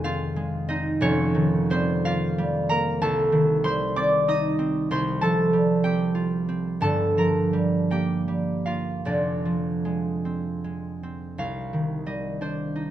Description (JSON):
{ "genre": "classical, solo harp piece", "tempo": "50-65 BPM (dotted quarters)", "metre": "6/8", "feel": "rubato", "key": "C dorian from 3.0 s", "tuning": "A4 = 440 Hz", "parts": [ { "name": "concert harp", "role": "solo", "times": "0.0-12.9 s", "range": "F1 to Eb6", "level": "-22 LUFS", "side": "right 1 dB", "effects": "none" } ], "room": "light reverb", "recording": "close, detailed microphones", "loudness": "-22 LUFS", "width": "side -12 dB against mid", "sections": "0.0-11.4 A section; 11.4-12.9 B section", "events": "none", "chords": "0.0 Fm7; 1.0 Eb9/F; 3.0 Cm6; 4.9 Fadd9/C; 6.8 Gm7; 9.1 Fm6; 11.4 Cmadd9" }